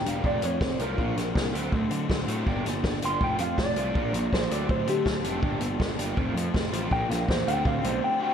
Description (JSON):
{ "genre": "indie rock", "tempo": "162 BPM", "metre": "4/4", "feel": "straight", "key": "unclear", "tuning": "A4 = 439 Hz", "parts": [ { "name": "mellow electric guitar", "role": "melody", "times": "0.0-8.3 s", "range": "G4 to C6", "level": "-29 LUFS", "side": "left 1 dB", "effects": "slapback echo" }, { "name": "crunchy overdriven guitar", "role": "riff", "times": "0.0-8.3 s", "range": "F3 to G4", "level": "-32 LUFS", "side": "right 5 dB", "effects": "analog chorus, slapback echo, tape echo" }, { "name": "fuzz guitar", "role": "riff", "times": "0.0-8.3 s", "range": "F2 to G4", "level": "-35 LUFS", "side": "left 9 dB", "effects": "distortion, slapback echo" }, { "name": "fuzz picked electric bass", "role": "bass", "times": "0.1-8.0 s", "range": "E1 to D3", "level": "-31 LUFS", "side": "equal", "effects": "overdrive" }, { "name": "vintage drum kit", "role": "drums", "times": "0.1-7.9 s", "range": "hi-hat, kick drum, snare drum", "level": "-29 LUFS", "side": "equal", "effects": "none" }, { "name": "tonewheel organ", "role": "sustained chords", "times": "2.5-8.3 s", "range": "F3 to Bb4", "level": "-40 LUFS", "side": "right 1 dB", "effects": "slow rotary speaker" } ], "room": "moderate scoring stage reverb, RT60 1.9 s, studio ambience", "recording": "big arena sound", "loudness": "-24 LUFS", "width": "side -8 dB against mid", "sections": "0.0-8.3 A section", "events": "clean electric guitar solo 0.0-8.3", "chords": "0.2 F; 1.0 Bb; 1.5 D7sus4; 2.5 Gmadd9; 3.2 F; 4.0 Bb; 4.5 D7sus4; 5.4 Gmadd9; 6.2 F; 6.9 Bb; 7.5 D7sus4", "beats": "0.24 0.61 | 0.99 1.36 1.73 2.10 | 2.47 2.84 3.21 3.58 | 3.95 4.32 4.69 5.06 | 5.43 5.80 6.17 6.54 | 6.91 7.28 7.65 8.02" }